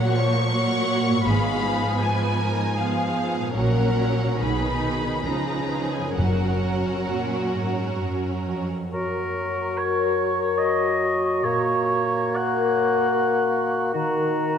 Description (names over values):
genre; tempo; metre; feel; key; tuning
classical, slow romantic movement for symphony orchestra; 62-82 BPM; 3/4; rubato; F# major; A4 = 440 Hz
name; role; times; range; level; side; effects
warm symphonic violin section; melody; 0.0-8.0 s; F#5 to C#6; -30 LUFS; left 3 dB; none
warm symphonic violin section; second line; 0.0-8.7 s; F#4 to Ab5; -29 LUFS; left 2 dB; none
rich symphonic viola section; accompaniment; 0.0-8.7 s; D#3 to D#4; -28 LUFS; right 2 dB; none
concert harp; arpeggios; 0.0-14.6 s; F#2 to C#5; -30 LUFS; left 9 dB; none
warm studio cello section; bass; 0.0-8.9 s; E#2 to C#3; -26 LUFS; right 2 dB; none
rich symphonic double bass section; bass; 1.3-7.1 s; F#1 to C#2; -28 LUFS; right 2 dB; none
timpani; percussion; 6.2-7.5 s; F#2; -27 LUFS; equal; none
mellow clarinet; second line; 8.9-14.6 s; F#4; -30 LUFS; equal; none
mellow hollow silver concert flute; second line; 8.9-14.6 s; A#5 to C#6; -28 LUFS; equal; none
warm oboe; second line; 8.9-14.6 s; F#4 to F#5; -26 LUFS; right 1 dB; none
mellow bassoon; accompaniment; 8.9-14.6 s; D#3 to A#3; -25 LUFS; equal; none
room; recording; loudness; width
wet concert hall reverb, RT60 2.5 s; none; -21 LUFS; side -8 dB against mid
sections
0.0-8.9 A section; 8.9-14.6 B section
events
none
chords
0.0 F#/A#; 4.4 G#m/B; 5.3 C#9; 6.2 F#; 11.4 F#/A#; 13.9 D#m